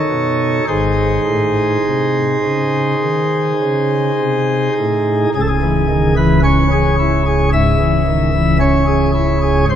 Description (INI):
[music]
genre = classical, chorale-style piece for pipe organ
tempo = 51-56 BPM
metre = 4/4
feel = rubato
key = C# minor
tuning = A4 = 439 Hz
[part]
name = pipe organ, sparkling flutes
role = solo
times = 0.0-9.8 s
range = C#1 to E5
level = -13 LUFS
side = equal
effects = none
[sound]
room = wet church reverb, RT60 3.7 s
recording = none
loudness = -13 LUFS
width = side -9 dB against mid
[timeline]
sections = 0.0-5.3 A section; 5.3-9.8 B section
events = none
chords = 0.0 D#(b5, no3); 0.7 G#; 5.3 C#m